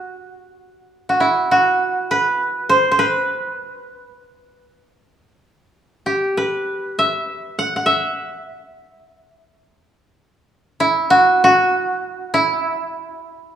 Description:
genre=japanese traditional, Japanese chamber music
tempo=50 BPM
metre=2/4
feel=rubato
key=E hirajoshi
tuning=A4 = 438 Hz
part: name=koto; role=solo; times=0.0-13.6 s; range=E4 to F#5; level=-16 LUFS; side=right 1 dB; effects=none
room=moderate recital hall reverb, RT60 1.7 s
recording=studio reverb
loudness=-16 LUFS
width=side -9 dB against mid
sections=0.0-13.6 A section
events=none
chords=none

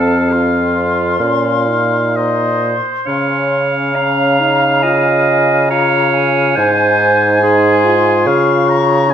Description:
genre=classical, slow romantic movement for wind quintet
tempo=60-72 BPM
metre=4/4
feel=rubato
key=unclear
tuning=A4 = 441 Hz
part: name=silver concert flute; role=melody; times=0.0-9.1 s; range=Ab5 to Db6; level=-20 LUFS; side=left 10 dB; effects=none
part: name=clear oboe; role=second line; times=0.0-9.1 s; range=Eb5 to Bb5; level=-18 LUFS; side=left 3 dB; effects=none
part: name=bright clarinet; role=accompaniment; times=0.0-9.1 s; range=F4 to F5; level=-17 LUFS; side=right 6 dB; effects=none
part: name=mellow French horn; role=accompaniment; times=0.0-9.1 s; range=C4 to F4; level=-20 LUFS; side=equal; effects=none
part: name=warm bassoon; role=bass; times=0.0-9.1 s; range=F2 to Db3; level=-15 LUFS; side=right 1 dB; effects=none
room=moderate recital hall reverb, RT60 1.4 s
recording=none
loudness=-11 LUFS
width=side -9 dB against mid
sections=0.0-9.1 A section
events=none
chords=0.0 F; 1.2 Bbm; 3.1 Db; 6.6 Ab; 8.3 Db

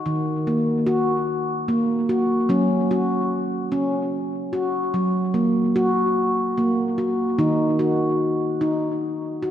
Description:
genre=world meditative, meditative tuned percussion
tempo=74 BPM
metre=3/4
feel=straight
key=Eb minor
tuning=A4 = 441 Hz
part: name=handpan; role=solo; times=0.0-9.5 s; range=Eb3 to Gb4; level=-20 LUFS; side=equal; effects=analog delay
room=wet lush hall reverb, RT60 2.5 s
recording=dreamy mix soaked in reverb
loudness=-19 LUFS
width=side -10 dB against mid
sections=0.0-9.5 A section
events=none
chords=0.0 Ebm; 2.5 Gb; 7.4 Ebm

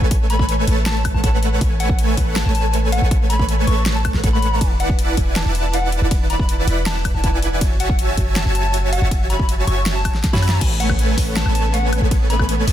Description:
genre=future bass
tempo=160 BPM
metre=4/4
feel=half-time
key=A major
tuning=A4 = 440 Hz
part: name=dense compressed supersaw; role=riff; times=0.0-12.7 s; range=A3 to B5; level=-22 LUFS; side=right 1 dB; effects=sidechain pumping
part: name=warm 808-style bass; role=bass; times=0.0-12.7 s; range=E1 to F#2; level=-20 LUFS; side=equal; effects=tube saturation, sidechain pumping
part: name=electronic kick drum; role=drums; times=0.1-12.5 s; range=none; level=-20 LUFS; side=equal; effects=none
part: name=pop drum kit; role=drums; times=0.1-12.7 s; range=crash cymbal, hi-hat, ride cymbal, snare drum, woodblock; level=-25 LUFS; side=left 1 dB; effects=none
part: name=soft struck synth lead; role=melody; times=0.3-12.5 s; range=F#5 to C#6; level=-26 LUFS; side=left 2 dB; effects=chorus, sidechain pumping, tape echo
part: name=bright studio string section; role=sustained chords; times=10.6-12.7 s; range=C#3 to B3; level=-31 LUFS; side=right 2 dB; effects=sidechain pumping
room=little or no reverb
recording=dense, heavily limited modern master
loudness=-15 LUFS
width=side -11 dB against mid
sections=0.0-10.6 A section; 10.6-12.7 A section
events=drop 0.0-10.6, 10.6-12.7; drum fill 10.2-10.6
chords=0.0 Amaj9; 4.6 E9sus4; 7.6 F#m9; 10.6 Amaj9

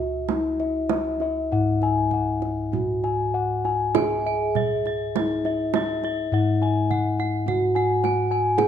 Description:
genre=Javanese gamelan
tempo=49-55 BPM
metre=4/4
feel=straight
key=unclear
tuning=A4 = 440 Hz
part: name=gamelan-type bronze metallophone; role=melody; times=0.0-8.7 s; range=E4-45c to G#4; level=-26 LUFS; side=equal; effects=none
part: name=gamelan-type bossed gongs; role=arpeggios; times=0.0-8.7 s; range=E5-45c to G#5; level=-27 LUFS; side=left 6 dB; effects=none
part: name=gamelan-type bossed gongs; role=bass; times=0.0-8.7 s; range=C#2 to G#4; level=-27 LUFS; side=left 2 dB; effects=none
part: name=kendang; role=percussion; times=0.3-8.7 s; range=none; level=-28 LUFS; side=right 10 dB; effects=none
part: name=gamelan-type bronze metallophone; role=arpeggios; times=4.0-8.7 s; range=E5-45c to G#5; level=-30 LUFS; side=right 4 dB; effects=none
room=moderate recital hall reverb, RT60 1.3 s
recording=none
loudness=-21 LUFS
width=side -9 dB against mid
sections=0.0-8.7 A section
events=none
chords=none

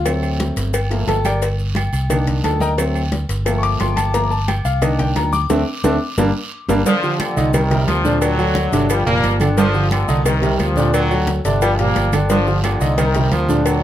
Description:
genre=latin, salsa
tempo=176 BPM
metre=4/4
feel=straight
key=G minor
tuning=A4 = 442 Hz
part: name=clear grand piano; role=accompaniment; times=0.0-13.8 s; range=D3 to D6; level=-20 LUFS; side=left 2 dB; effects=none
part: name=fingered electric bass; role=bass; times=0.0-13.8 s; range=F1 to D2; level=-20 LUFS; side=equal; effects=none
part: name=agogo bells and timbales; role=percussion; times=0.1-13.8 s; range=none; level=-28 LUFS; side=right 4 dB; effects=none
part: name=congas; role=percussion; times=0.1-13.8 s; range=none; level=-26 LUFS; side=equal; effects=none
part: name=cowbell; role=percussion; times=0.1-13.8 s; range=none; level=-26 LUFS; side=left 4 dB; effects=none
part: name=guiro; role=percussion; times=0.1-13.8 s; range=none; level=-35 LUFS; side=right 6 dB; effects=none
part: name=maracas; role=percussion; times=0.1-13.8 s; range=none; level=-36 LUFS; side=left 6 dB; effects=none
part: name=brilliant trombone section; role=melody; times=6.9-13.8 s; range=Bb2 to Bb3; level=-20 LUFS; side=left 1 dB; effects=none
part: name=mellow bass clarinet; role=second line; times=6.9-13.8 s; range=Bb2 to G3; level=-21 LUFS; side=right 4 dB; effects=none
room=moderate studio reverb, RT60 0.5 s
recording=none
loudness=-15 LUFS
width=side -12 dB against mid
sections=0.0-6.9 A section; 6.9-13.8 B section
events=grand piano solo 0.0-6.9; drum fill 5.5-6.9; band accent 5.5-6.9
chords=0.1 D7; 0.7 Gm7; 2.1 Cm7; 2.8 D7; 3.5 Gm7; 4.8 Cm7; 5.5 D5; 6.2 Gm; 6.9 Gm7; 7.5 Cm7; 8.2 D7; 8.9 Gm7; 10.3 Cm7; 10.9 D7; 11.6 Gm7; 13.0 Cm7

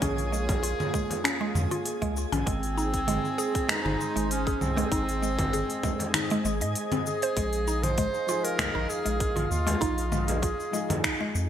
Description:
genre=organic downtempo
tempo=98 BPM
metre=4/4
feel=swing 53% on 16ths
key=unclear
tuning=A4 = 443 Hz
part: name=warm clarinet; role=melody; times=0.0-11.0 s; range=C4 to C5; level=-32 LUFS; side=right 1 dB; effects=digital delay
part: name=warm analog pad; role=sustained chords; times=0.0-11.5 s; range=Ab3 to F5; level=-35 LUFS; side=right 1 dB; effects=chorus, vintage 12-bit sampler grit, sidechain pumping
part: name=mallet-like synth pluck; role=arpeggios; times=0.0-11.5 s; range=Ab3 to Eb5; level=-32 LUFS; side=equal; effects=chorus, phaser, digital delay
part: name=round analog bass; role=bass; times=0.0-11.5 s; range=Ab1 to Ab2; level=-30 LUFS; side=equal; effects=sidechain pumping
part: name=electronic kick drum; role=drums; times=0.0-11.2 s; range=none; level=-32 LUFS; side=equal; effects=overdrive
part: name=organic electronic drum kit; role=drums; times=0.0-11.5 s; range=cabasa, congas, finger snaps, hi-hat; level=-31 LUFS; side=equal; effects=overdrive, gated reverb
part: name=twinkling granular texture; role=texture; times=0.0-7.4 s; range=Ab4 to Ab5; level=-42 LUFS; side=right 1 dB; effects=built-in reverb
part: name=frame drum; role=percussion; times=0.5-11.0 s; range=none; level=-38 LUFS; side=left 1 dB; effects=none
part: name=felt-muted upright piano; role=accompaniment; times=8.3-11.5 s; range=F3 to Ab4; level=-37 LUFS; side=left 3 dB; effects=ensemble chorus, sidechain pumping, digital delay
room=moderate lush hall reverb, RT60 2.3 s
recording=bright 1980s-style digital production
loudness=-25 LUFS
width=side -10 dB against mid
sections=0.0-7.4 A section; 7.4-11.5 B section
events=break 6.8-7.4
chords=0.0 Bbm7; 2.5 Ab; 7.4 Fm7/Bb

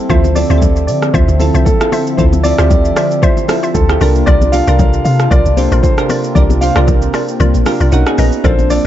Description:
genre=amapiano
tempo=115 BPM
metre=4/4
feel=swing 55% on 16ths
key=unclear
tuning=A4 = 441 Hz
part: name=soft electric-piano-like synth keys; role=accompaniment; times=0.0-8.9 s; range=C4 to A#5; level=-19 LUFS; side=right 4 dB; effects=chorus
part: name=hollow soft pad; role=sustained chords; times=0.0-8.9 s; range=C3 to E5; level=-20 LUFS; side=left 1 dB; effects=chorus, sidechain pumping
part: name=dark baby grand piano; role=melody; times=0.1-8.9 s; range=A4 to F5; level=-18 LUFS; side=right 1 dB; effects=tape echo
part: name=mallet-like synth pluck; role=stabs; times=0.1-8.9 s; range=F4 to E5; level=-22 LUFS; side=left 3 dB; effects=chorus, tape echo
part: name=deep log drum bass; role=bass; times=0.1-8.8 s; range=Bb1 to D3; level=-12 LUFS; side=equal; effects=none
part: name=deep house drum kit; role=drums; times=0.1-8.8 s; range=hi-hat, kick drum, rim click, shaker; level=-15 LUFS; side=equal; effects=none
part: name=congas and bongos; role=percussion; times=0.1-8.8 s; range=none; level=-21 LUFS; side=left 6 dB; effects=none
room=little or no reverb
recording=dark, warm production, nothing above 7.7 kHz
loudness=-9 LUFS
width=side -12 dB against mid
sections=0.0-8.9 A section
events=kick muted 7.4-8.4; synth keys fill 7.4-8.4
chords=0.1 Dm9; 4.0 C9sus4; 7.9 Bmaj7

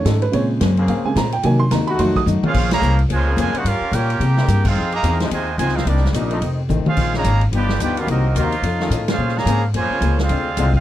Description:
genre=jazz, big band swing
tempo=217 BPM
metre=4/4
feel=swing 60% on 8ths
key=Bb minor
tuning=A4 = 440 Hz
part: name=warm baby grand piano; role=accompaniment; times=0.0-2.2 s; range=Db3 to Eb6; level=-20 LUFS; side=right 3 dB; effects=none
part: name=upright bass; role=bass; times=0.0-10.8 s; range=F1 to C3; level=-18 LUFS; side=equal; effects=none
part: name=fingerpicked swing-style acoustic guitar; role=accompaniment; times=0.1-10.8 s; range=F2 to C5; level=-26 LUFS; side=left 9 dB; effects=none
part: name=swinging big-band drum kit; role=drums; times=0.1-10.8 s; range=crash cymbal, hi-hat, kick drum, ride cymbal, snare drum, toms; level=-25 LUFS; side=equal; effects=none
part: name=warm trombone section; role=sustained chords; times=0.8-10.7 s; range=C3 to Ab4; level=-25 LUFS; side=left 3 dB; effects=none
part: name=muted trombone section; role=second line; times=2.4-10.8 s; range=C3 to G4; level=-28 LUFS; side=right 5 dB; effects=none
part: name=clear trumpet section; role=melody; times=2.5-10.8 s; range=Bb3 to Bb5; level=-23 LUFS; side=right 3 dB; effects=none
room=little or no reverb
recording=none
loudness=-16 LUFS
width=side -13 dB against mid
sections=0.0-2.5 A section; 2.5-10.8 B section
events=grand piano solo 0.0-2.5; drum fill 2.3, 6.7; band accent 2.7, 4.6, 9.0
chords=0.3 Bbm9; 1.4 Cm7b5; 2.0 F7b9; 2.5 Bbm9; 3.7 Gm7b5; 4.2 C7b13; 4.8 Fm7; 5.9 Cm9; 6.4 F7; 7.0 Bbm11; 7.5 G7b13; 8.1 Cm7b5; 8.6 F7alt; 9.2 Bbm9; 10.3 Dm7b5

